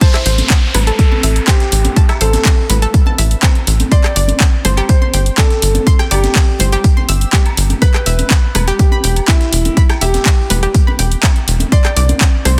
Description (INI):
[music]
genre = progressive house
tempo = 123 BPM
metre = 4/4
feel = straight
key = A minor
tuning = A4 = 440 Hz
[part]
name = warm grand piano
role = melody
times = 0.0-12.6 s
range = E4 to D5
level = -24 LUFS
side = equal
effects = tape echo
[part]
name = analog pluck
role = arpeggios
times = 0.0-12.5 s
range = G4 to E6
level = -25 LUFS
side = equal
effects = chorus, sidechain pumping, digital delay
[part]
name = breakbeat sampler-style drum kit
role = drums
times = 0.0-12.6 s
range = hi-hat, snare drum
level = -30 LUFS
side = equal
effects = none
[part]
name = electronic kick drum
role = drums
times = 0.0-12.3 s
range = none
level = -13 LUFS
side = equal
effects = overdrive, studio reverb
[part]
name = house drum kit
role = drums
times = 0.0-12.6 s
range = handclaps, hi-hat, rim click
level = -21 LUFS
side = equal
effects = overdrive, studio reverb
[part]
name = woodblock and congas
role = percussion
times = 0.0-12.6 s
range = none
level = -26 LUFS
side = equal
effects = sidechain pumping on perc
[part]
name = downlifter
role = sound effects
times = 0.0-3.9 s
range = none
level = -27 LUFS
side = equal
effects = none
[part]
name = tight sequencer bass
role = bass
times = 0.3-12.6 s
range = E1 to C2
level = -16 LUFS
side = equal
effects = sidechain pumping
[sound]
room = little or no reverb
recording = dense, heavily limited modern master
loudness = -12 LUFS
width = mono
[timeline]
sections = 0.0-12.6 A section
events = drop 0.0-12.6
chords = 0.0 Am; 3.9 Gsus4; 7.8 Em; 11.7 Csus2